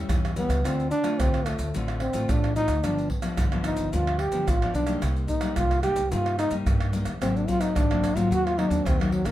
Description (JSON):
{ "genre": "samba and choro", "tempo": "110 BPM", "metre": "4/4", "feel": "straight", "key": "G minor", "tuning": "A4 = 440 Hz", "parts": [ { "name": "nylon-string guitar", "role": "accompaniment", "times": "0.0-9.3 s", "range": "G2 to F4", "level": "-30 LUFS", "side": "left 3 dB", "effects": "none" }, { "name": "upright bass", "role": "bass", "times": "0.0-9.3 s", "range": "G1 to G2", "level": "-28 LUFS", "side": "equal", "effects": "none" }, { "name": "maracas, surdo, pandeiro and tamborim", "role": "percussion", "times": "0.1-9.3 s", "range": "none", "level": "-28 LUFS", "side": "right 1 dB", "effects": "none" }, { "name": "clear trombone", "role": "melody", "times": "0.4-9.3 s", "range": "Eb3 to G4", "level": "-26 LUFS", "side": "equal", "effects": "none" } ], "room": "light reverb", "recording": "none", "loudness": "-22 LUFS", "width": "side -14 dB against mid", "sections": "0.0-9.3 A section", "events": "trombone solo 0.0-9.3", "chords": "0.0 A7 (rootless); 0.6 Dm7; 2.8 G7; 5.0 Cm7; 7.2 Ab9" }